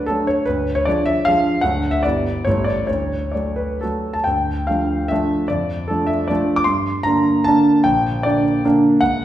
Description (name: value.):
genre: classical, romantic triple-time dance for piano with dotted rhythms.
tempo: 120-167 BPM.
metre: 3/4.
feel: rubato.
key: D major, D minor from 4.3 s.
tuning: A4 = 439 Hz.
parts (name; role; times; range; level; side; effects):
warm concert grand piano; solo; 0.0-9.2 s; G1 to D6; -16 LUFS; equal; none.
room: wet recital hall reverb, RT60 1.4 s.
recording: recorded in a church or concert hall.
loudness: -16 LUFS.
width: side -12 dB against mid.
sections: 0.0-4.3 A section; 4.3-9.2 B section.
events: none.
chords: 0.5 Ddim; 1.6 D; 2.0 Em/G; 2.5 A7; 2.9 D; 4.3 Dm; 5.5 Dm/F; 6.7 Gm; 7.9 Gm/Bb.